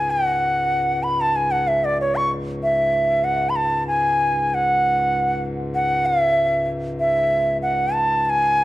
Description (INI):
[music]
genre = indian classical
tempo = 95 BPM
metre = 7/4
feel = straight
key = C# raga bhairavi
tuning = A4 = 441 Hz
[part]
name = bright reedy bansuri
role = melody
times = 0.0-8.6 s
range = C#5 to C#6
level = -18 LUFS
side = equal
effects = none
[part]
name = pedal harmonium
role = drone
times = 0.0-8.6 s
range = C#2 to G#2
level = -28 LUFS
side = left 1 dB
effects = none
[sound]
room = moderate recital hall reverb, RT60 1.5 s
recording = dark, warm production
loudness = -18 LUFS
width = side -16 dB against mid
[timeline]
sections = 0.0-8.6 A section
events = none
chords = none